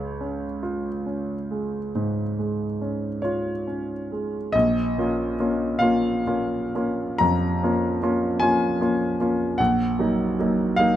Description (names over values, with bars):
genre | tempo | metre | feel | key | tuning
classical, romantic nocturne for solo piano | 41-51 BPM (dotted quarters) | 12/8 | rubato | Db major, Bb minor from 4.5 s | A4 = 445 Hz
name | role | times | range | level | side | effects
clear concert grand piano | solo | 0.0-11.0 s | Bb1 to Bb5 | -21 LUFS | equal | none
room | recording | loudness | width
light reverb | close, detailed microphones | -22 LUFS | side -12 dB against mid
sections
0.0-4.5 A section; 4.5-11.0 B section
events
none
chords
0.0 Db; 4.5 Bbm; 9.6 Ebm/Bb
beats
0.63 1.95 3.24 | 4.54 5.80 7.21 8.41 | 9.59 10.79